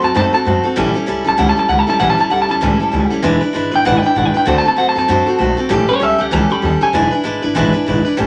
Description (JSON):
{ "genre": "rockabilly", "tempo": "194 BPM", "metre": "4/4", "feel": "swing 60% on 8ths", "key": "A mixolydian", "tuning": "A4 = 440 Hz", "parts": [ { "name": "electric guitar through a small old amp", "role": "melody", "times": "0.0-7.1 s", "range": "C#5 to B5", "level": "-18 LUFS", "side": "equal", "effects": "none" }, { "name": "picked steel-string acoustic guitar", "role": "accompaniment", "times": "0.0-8.3 s", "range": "A2 to B4", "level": "-18 LUFS", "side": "equal", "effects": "none" }, { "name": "upright bass", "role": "bass", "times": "0.0-8.3 s", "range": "E1 to F#2", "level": "-22 LUFS", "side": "equal", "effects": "none" } ], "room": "light reverb", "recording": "none", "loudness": "-15 LUFS", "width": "mono", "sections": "0.0-8.2 A section", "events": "clean electric guitar solo 0.0-8.2", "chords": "0.0 D#dim7; 0.8 A7; 3.2 E7; 4.5 D7; 5.7 A7; 6.9 E7", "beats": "0.16 0.47 | 0.77 1.08 1.39 1.70 | 2.01 2.32 2.62 2.93 | 3.24 3.55 3.86 4.17 | 4.48 4.79 5.09 5.40 | 5.71 6.02 6.33 6.64 | 6.94 7.25 7.56 7.87 | 8.18" }